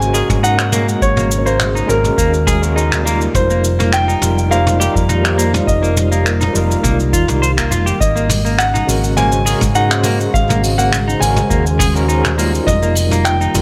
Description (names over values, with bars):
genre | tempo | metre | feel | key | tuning
sunset chillout | 103 BPM | 4/4 | swing 53% on 16ths | unclear | A4 = 438 Hz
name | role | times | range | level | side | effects
warm grand piano | melody | 0.0-13.6 s | Bb4 to Ab5 | -21 LUFS | equal | analog delay
overdriven tine electric piano | accompaniment | 0.0-13.6 s | G3 to C5 | -23 LUFS | equal | medium tremolo, analog delay
soft string machine | sustained chords | 0.0-13.6 s | Db3 to F5 | -26 LUFS | equal | ensemble chorus
hollow-body short-scale fingered electric bass | bass | 0.0-13.6 s | F1 to Ab2 | -19 LUFS | equal | none
vintage brush drum kit | drums | 0.0-13.6 s | cabasa, finger snaps, hi-hat, toms | -22 LUFS | equal | none
semi-hollow electric guitar | arpeggios | 0.1-13.5 s | Bb3 to C5 | -24 LUFS | equal | analog delay
electronic kick drum | drums | 0.3-12.8 s | none | -22 LUFS | equal | none
room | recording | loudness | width
light reverb, studio ambience | echo-heavy mix | -14 LUFS | mono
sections
0.0-13.6 A section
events
none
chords
0.0 Ab9sus4; 3.3 F9sus4; 8.0 Ab9sus4; 12.7 F9sus4